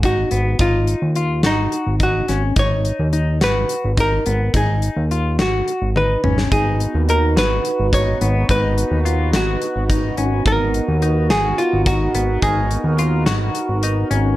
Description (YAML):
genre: progressive instrumental, band music in an uneven meter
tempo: 213 BPM (eighths)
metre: 7/8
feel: straight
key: G# dorian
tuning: A4 = 440 Hz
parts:
  - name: semi-hollow electric guitar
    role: arpeggios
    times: 0.0-14.4 s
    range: B3 to F#4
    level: -25 LUFS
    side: left 5 dB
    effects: harmonic tremolo
  - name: fat analog bass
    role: bass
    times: 0.0-14.3 s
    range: G#1 to D#2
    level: -19 LUFS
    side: equal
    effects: none
  - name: gated 80s drum kit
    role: drums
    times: 0.0-14.2 s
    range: hi-hat, kick drum, snare drum, toms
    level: -21 LUFS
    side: equal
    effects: none
  - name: archtop guitar, miked and amplified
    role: melody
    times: 0.1-14.1 s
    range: D#4 to C#5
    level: -21 LUFS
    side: equal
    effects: none
  - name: sweeping resonant pad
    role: accompaniment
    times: 6.5-14.4 s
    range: B3 to B4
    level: -24 LUFS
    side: right 3 dB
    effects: chorus, phaser
room: light reverb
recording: dark, warm production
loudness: -16 LUFS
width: side -16 dB against mid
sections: 0.0-14.4 A section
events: drum fill 6.0-6.5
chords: 0.0 G#m7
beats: 0.03 0.32 | 0.60 0.88 1.16 1.44 1.72 2.01 2.29 | 2.57 2.85 3.13 3.42 3.70 3.98 4.26 | 4.54 4.82 5.11 5.39 5.67 5.95 6.23 | 6.51 6.79 7.08 7.36 7.64 7.92 8.20 | 8.48 8.77 9.05 9.33 9.61 9.89 10.17 | 10.46 10.74 11.02 11.30 11.58 11.86 12.14 | 12.42 12.71 12.99 13.27 13.55 13.83 14.11